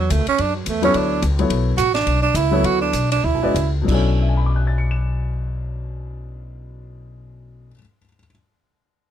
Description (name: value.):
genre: modal jazz.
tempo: 183-215 BPM.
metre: 4/4.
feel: swing 58% on 8ths.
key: B dorian.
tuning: A4 = 441 Hz.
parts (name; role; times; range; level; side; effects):
growling tenor saxophone; second line; 0.0-3.7 s; F#3 to F#4; -19 LUFS; right 7 dB; none.
upright bass; bass; 0.0-7.7 s; A1 to F#2; -21 LUFS; left 1 dB; none.
compact cocktail drum kit; drums; 0.1-4.0 s; crash cymbal, hi-hat, kick drum, ride cymbal, snare drum; -30 LUFS; left 2 dB; none.
warm baby grand piano; accompaniment; 0.8-8.3 s; B2 to E7; -22 LUFS; left 4 dB; none.
room: light reverb.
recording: none.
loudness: -17 LUFS.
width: side -10 dB against mid.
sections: 0.0-3.9 A section; 3.9-6.5 B section.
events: tenor saxophone solo 0.0-3.9; slowing down 1.5-3.9.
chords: 0.0 Bm11.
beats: 0.11 | 0.39 0.67 0.94 1.22 | 1.50 1.78 2.06 2.35 | 2.64 2.94 3.24 3.55 | 3.87 4.20 4.53 4.86 | 5.18 5.51 5.84 6.17.